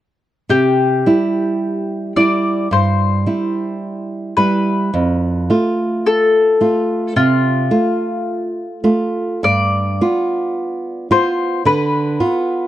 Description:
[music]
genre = romantic duo for mandolin and classical guitar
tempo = 54 BPM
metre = 4/4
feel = rubato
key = C major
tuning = A4 = 440 Hz
[part]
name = mandolin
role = melody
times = 0.5-12.7 s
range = F4 to D5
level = -17 LUFS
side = left 4 dB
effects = none
[part]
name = nylon-string guitar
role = accompaniment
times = 0.5-12.7 s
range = F2 to F4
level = -16 LUFS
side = right 2 dB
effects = none
[sound]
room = light reverb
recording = dry, close 1970s-style studio recording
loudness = -14 LUFS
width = side -13 dB against mid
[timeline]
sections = 0.5-12.7 A section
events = none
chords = 0.5 C; 4.9 F; 9.4 G7

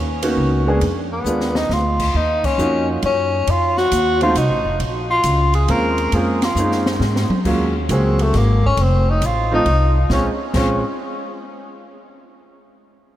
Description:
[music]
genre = jazz, small-group swing and bop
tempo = 136 BPM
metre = 3/4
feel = swing 67% on 8ths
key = Bb minor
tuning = A4 = 439 Hz
[part]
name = upright bass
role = bass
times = 0.0-10.8 s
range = F1 to Ab2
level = -19 LUFS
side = equal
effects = none
[part]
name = clear grand piano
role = accompaniment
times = 0.2-10.8 s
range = F3 to Ab4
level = -22 LUFS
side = right 1 dB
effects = none
[part]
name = open jazz drum kit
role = drums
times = 0.2-10.7 s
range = crash cymbal, hi-hat, kick drum, ride cymbal, snare drum, toms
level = -26 LUFS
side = equal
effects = none
[part]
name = warm tenor saxophone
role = melody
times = 1.1-10.8 s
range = A3 to Bb4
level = -20 LUFS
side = left 1 dB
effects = tape echo
[sound]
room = moderate huge ambient reverb, RT60 3.9 s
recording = dreamy mix soaked in reverb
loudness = -15 LUFS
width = side -13 dB against mid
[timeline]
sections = 0.0-7.4 A section; 7.4-10.1 B section; 10.1-11.4 C section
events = drum fill 1.3-1.7, 6.6-7.4; band accent 2.4, 6.3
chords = 0.0 Bmaj9; 0.8 Bb7b9; 2.1 Ebm9; 3.5 F7; 4.8 Bbm7; 7.4 Ebm11; 8.8 F7; 10.1 Bbm7

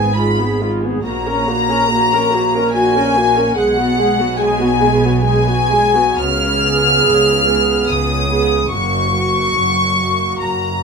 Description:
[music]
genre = classical, slow romantic movement for string orchestra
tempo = 71 BPM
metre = 3/4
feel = uneven beats, rubato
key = F# major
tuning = A4 = 440 Hz
[part]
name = rich studio violin section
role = melody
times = 0.0-10.8 s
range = F#5 to E#6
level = -18 LUFS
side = left 2 dB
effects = none
[part]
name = clear studio violin section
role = second line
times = 0.0-10.8 s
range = F#5 to E#6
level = -20 LUFS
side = left 4 dB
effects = none
[part]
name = dark studio viola section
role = accompaniment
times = 0.0-10.8 s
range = Ab3 to A#4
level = -18 LUFS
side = right 1 dB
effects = none
[part]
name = rich studio double bass section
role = bass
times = 0.0-10.8 s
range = F#1 to C#2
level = -22 LUFS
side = right 4 dB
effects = none
[part]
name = warm studio cello section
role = bass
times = 0.0-10.8 s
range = F#2 to C#3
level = -22 LUFS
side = right 1 dB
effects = none
[sound]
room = moderate large studio reverb, RT60 0.8 s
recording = minimal, uncompressed stereo recording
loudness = -12 LUFS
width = side -5 dB against mid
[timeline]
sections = 0.0-10.8 A section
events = none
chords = 0.0 Fdim/Ab; 1.1 F#/A#; 3.6 G#m7/B; 6.2 C#7; 8.7 F#

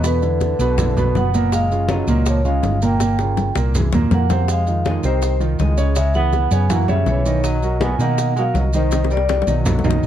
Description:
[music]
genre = Afro-Cuban jazz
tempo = 162 BPM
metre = 4/4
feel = straight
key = unclear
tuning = A4 = 440 Hz
[part]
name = vibraphone with medium mallets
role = melody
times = 0.0-10.1 s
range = B4 to Ab5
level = -23 LUFS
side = equal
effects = none
[part]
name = bright trombone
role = second line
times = 0.0-10.1 s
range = D3 to B3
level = -29 LUFS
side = left 1 dB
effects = none
[part]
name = warm concert grand piano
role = accompaniment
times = 0.0-10.1 s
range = Bb2 to Eb5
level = -22 LUFS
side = right 3 dB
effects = none
[part]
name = hollow-body short-scale fingered electric bass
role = bass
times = 0.0-10.1 s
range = F#1 to B2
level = -19 LUFS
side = equal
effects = none
[part]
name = bongos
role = percussion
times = 0.0-10.0 s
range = none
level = -27 LUFS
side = left 7 dB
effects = none
[part]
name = congas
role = percussion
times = 0.0-9.9 s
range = none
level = -24 LUFS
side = equal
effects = none
[part]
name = maracas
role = percussion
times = 0.0-10.1 s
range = none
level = -36 LUFS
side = right 6 dB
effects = none
[sound]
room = light reverb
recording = dark, warm production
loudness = -15 LUFS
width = side -10 dB against mid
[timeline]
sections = 0.0-10.1 A section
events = drum fill 3.0-4.5, 8.9-10.1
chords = 0.0 Esus2; 1.5 Gbmaj9; 3.0 Gm7b5; 3.7 C7alt; 4.5 Fm7; 6.0 Dbm7; 6.7 Gb5; 7.4 Bmaj7; 8.9 Cm7

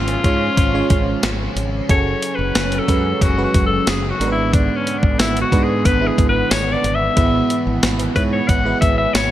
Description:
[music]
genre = 1980s-style pop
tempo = 91 BPM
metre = 4/4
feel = straight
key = unclear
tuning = A4 = 440 Hz
[part]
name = bright alto saxophone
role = melody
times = 0.0-9.3 s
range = C#4 to F#5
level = -21 LUFS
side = left 3 dB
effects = none
[part]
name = FM electric piano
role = accompaniment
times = 0.0-9.3 s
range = G#2 to C#5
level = -23 LUFS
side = right 4 dB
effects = chorus
[part]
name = cranked stack guitar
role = accompaniment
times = 0.0-9.3 s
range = E2 to C#4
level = -30 LUFS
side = right 1 dB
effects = overdrive, ensemble chorus
[part]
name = chorused pulse-width pad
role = sustained chords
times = 0.0-9.3 s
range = D3 to C#4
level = -25 LUFS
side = right 1 dB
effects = none
[part]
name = mellow fretless electric bass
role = bass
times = 0.0-9.3 s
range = F#1 to G#2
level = -23 LUFS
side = equal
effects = none
[part]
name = clean 12-bit digital drum machine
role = drums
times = 0.1-9.3 s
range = hi-hat, kick drum, snare drum, tambourine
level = -18 LUFS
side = equal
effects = gated reverb
[sound]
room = light reverb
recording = bright 1980s-style digital production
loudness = -15 LUFS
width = side -13 dB against mid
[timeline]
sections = 0.0-9.3 A section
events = alto saxophone solo 0.0-9.3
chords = 0.0 C#/G#; 1.9 F#madd9; 4.2 G#dim; 7.2 E/G#

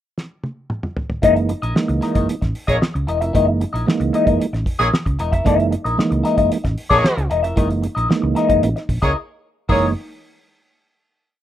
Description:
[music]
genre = funk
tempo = 113 BPM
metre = 4/4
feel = straight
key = F# mixolydian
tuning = A4 = 440 Hz
[part]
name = cloth-damped thuddy drum kit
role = drums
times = 0.2-9.8 s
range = hi-hat, kick drum, snare drum, toms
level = -21 LUFS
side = equal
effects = none
[part]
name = clean electric guitar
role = accompaniment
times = 1.2-9.9 s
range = E4 to E5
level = -19 LUFS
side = left 5 dB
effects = wah, tube saturation, phaser
[part]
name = mellow tonewheel organ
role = stabs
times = 1.2-9.9 s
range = E3 to D#4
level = -20 LUFS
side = right 4 dB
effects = slow rotary speaker
[part]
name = hollow-body short-scale fingered electric bass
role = bass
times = 1.2-9.9 s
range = E1 to C#2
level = -22 LUFS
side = equal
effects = none
[part]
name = warm horn section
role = second line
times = 2.7-9.9 s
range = A#3 to C#5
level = -19 LUFS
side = right 1 dB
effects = none
[sound]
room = moderate small room reverb, RT60 0.5 s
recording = rough home demo mix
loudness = -16 LUFS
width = side -12 dB against mid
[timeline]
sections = 0.0-1.2 pickup bar; 1.2-9.7 groove; 9.7-11.4 final chord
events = drum fill 0.2-1.2; break 9.2-9.7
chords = 0.0 N.C.; 1.2 F#13

